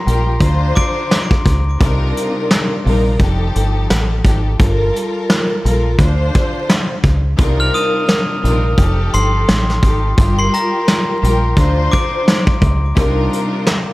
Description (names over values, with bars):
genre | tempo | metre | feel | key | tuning
hip hop, boom-bap hip-hop | 86 BPM | 4/4 | swing 61% on 16ths | C dorian | A4 = 440 Hz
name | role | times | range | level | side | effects
glockenspiel with hard plastic mallets | melody | 0.0-1.0, 7.6-12.1 s | Bb5 to F7 | -22 LUFS | left 1 dB | digital delay
warm studio string section | accompaniment | 0.1-13.9 s | C3 to C5 | -19 LUFS | left 1 dB | none
deep dub fingered electric bass | bass | 0.1-13.3 s | F1 to D2 | -15 LUFS | equal | none
soft brush drum kit | drums | 0.1-13.9 s | hi-hat, kick drum, snare drum | -15 LUFS | equal | none
room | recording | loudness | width
light reverb, small room ambience | vinyl crackle | -12 LUFS | side -19 dB against mid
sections
0.0-7.4 A section; 7.4-13.9 A section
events
none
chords
0.4 Dm7; 1.8 Cm11; 3.2 F9; 4.6 Gm9; 6.0 Dm7; 7.4 Cm11; 8.8 F9; 10.2 Gm7; 11.6 Dm7; 13.0 Cm11